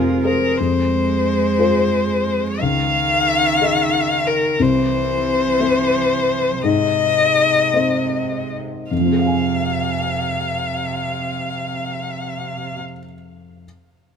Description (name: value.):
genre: neoclassical piano and strings.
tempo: 50-61 BPM (dotted quarters).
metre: 6/8.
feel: rubato.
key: F minor.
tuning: A4 = 441 Hz.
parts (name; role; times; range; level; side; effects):
rich violin; melody; 0.0-12.8 s; Bb4 to F5; -19 LUFS; left 4 dB; none.
rich cello; second line; 0.0-12.8 s; C3 to F4; -25 LUFS; right 6 dB; none.
felt-muted upright piano; accompaniment; 0.0-13.7 s; C2 to Ab5; -21 LUFS; left 1 dB; none.
rich viola; accompaniment; 0.0-0.6 s; Ab4 to Bb4; -31 LUFS; right 2 dB; none.
rich studio string section; sustained chords; 0.0-0.6 s; Ab3 to C5; -36 LUFS; right 1 dB; none.
rich double bass; bass; 0.0-0.6 s; F1; -31 LUFS; equal; none.
room: light reverb.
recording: minimal, uncompressed stereo recording.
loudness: -16 LUFS.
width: side -7 dB against mid.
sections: 0.6-8.9 A section; 8.9-13.6 B section.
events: slowing down 3.6-8.9.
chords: 0.0 Fm; 2.6 Dbadd9; 4.6 C; 6.6 Ab; 8.9 Fm.